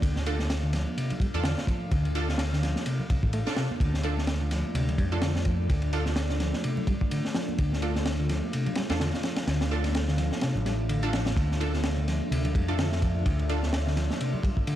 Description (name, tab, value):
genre	breakbeat, breaks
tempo	127 BPM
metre	4/4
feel	swing 57% on 16ths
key	unclear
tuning	A4 = 440 Hz
part	deep dark ambient pad	sustained chords	0.0-14.8 s	A3 to F5	-35 LUFS	left 1 dB	chorus, built-in reverb, sidechain pumping
part	reed electric piano	riff	0.0-14.8 s	C3 to A3	-32 LUFS	equal	fast tremolo, tube saturation, tape echo
part	overdriven picked electric bass	bass	0.0-14.1 s	A1 to F2	-28 LUFS	equal	none
part	crunchy breakbeat drum kit	drums	0.0-14.8 s	kick drum, ride cymbal, snare drum	-30 LUFS	equal	none
part	orchestra-hit-like synth stab	stabs	0.3-13.6 s	D4 to A4	-36 LUFS	right 2 dB	built-in reverb, tape echo
part	congas	percussion	0.4-14.4 s	none	-40 LUFS	right 3 dB	none
room	small room reverb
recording	vinyl crackle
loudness	-25 LUFS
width	side -12 dB against mid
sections	0.0-14.8 A section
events	none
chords	0.0 Dm